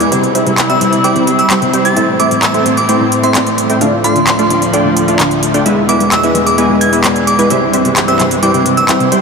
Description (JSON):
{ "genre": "EDM, festival progressive house", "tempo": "130 BPM", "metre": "4/4", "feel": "straight", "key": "unclear", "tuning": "A4 = 435 Hz", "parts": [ { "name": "glassy synth bell", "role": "melody", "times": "0.0-8.9 s", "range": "C6 to A6", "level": "-16 LUFS", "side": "right 1 dB", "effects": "chorus, diffuse ambient delay" }, { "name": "mellow electric guitar", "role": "accompaniment", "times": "0.0-9.2 s", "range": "A2 to E5", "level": "-18 LUFS", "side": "left 1 dB", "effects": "lush chorus, diffuse ambient delay" }, { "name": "dark studio string section", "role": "sustained chords", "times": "0.0-9.2 s", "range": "C2 to E4", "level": "-17 LUFS", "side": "equal", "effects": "none" }, { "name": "supersaw stab", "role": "riff", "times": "0.0-9.2 s", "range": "G3 to G#5", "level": "-14 LUFS", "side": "equal", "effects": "low-pass filter, diffuse ambient delay" }, { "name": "big-room dance drum kit", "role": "drums", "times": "0.0-9.2 s", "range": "handclaps, hi-hat", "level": "-17 LUFS", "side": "equal", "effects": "none" } ], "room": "wet huge ambient reverb, RT60 8.2 s", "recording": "dreamy mix soaked in reverb", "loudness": "-9 LUFS", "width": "side -4 dB against mid", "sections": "0.0-9.2 A section", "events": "none", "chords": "0.1 C; 2.0 Am; 3.8 Dm; 5.7 E; 7.5 C" }